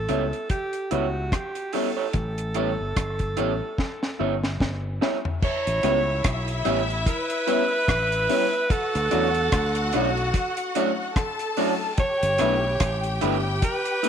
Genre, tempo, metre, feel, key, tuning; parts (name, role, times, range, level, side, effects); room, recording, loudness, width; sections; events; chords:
lovers rock reggae; 73 BPM; 4/4; swing 57% on 16ths; A4 = 438 Hz
warm alto saxophone; melody; 0.0-14.1 s; F#4 to C#5; -26 LUFS; right 2 dB; tape echo
fingered electric bass; bass; 0.0-13.6 s; G1 to E2; -28 LUFS; left 1 dB
FM electric piano with soft pad layer; accompaniment; 0.1-14.1 s; F#3 to E4; -29 LUFS; left 15 dB; chorus, phaser
electric guitar through a small old amp; stabs; 0.1-14.1 s; D4 to C#5; -29 LUFS; right 11 dB
deep reggae drum kit; drums; 0.1-14.1 s; crash cymbal, hi-hat, kick drum, rim click, snare drum, toms; -27 LUFS; equal
clear studio string section; second line; 5.4-14.1 s; E4 to A5; -29 LUFS; left 2 dB
moderate spring reverb, RT60 1.8 s, small room ambience; 1960s-style stereo with parts hard left and right; -22 LUFS; side -8 dB against mid
0.0-5.4 A section; 5.4-14.1 B section
drum fill 3.8-5.4
0.0 A7; 8.7 Dmaj7; 12.0 G6